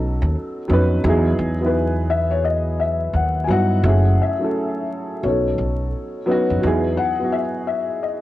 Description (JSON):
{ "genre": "lo-fi hip hop", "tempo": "86 BPM", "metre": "4/4", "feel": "swing 62% on 16ths", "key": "E major", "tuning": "A4 = 440 Hz", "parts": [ { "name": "dark upright piano", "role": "accompaniment", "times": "0.0-8.2 s", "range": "F#3 to B4", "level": "-22 LUFS", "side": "right 1 dB", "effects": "cassette tape, low-pass filter" }, { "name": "upright bass", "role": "bass", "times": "0.0-7.0 s", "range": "F#1 to G2", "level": "-20 LUFS", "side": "equal", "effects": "none" }, { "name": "felt-muted upright piano", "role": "melody", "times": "2.1-8.2 s", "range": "B4 to G#5", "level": "-23 LUFS", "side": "left 6 dB", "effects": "low-pass filter, cassette tape, tape echo" } ], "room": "light reverb, studio ambience", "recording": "home recording on cassette, vinyl crackle", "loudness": "-17 LUFS", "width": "side -15 dB against mid", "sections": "0.0-3.8 A section; 3.8-8.2 B section", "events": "none", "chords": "0.0 B7; 1.0 Emaj9; 3.8 F#m7; 5.2 B7; 6.6 Emaj9" }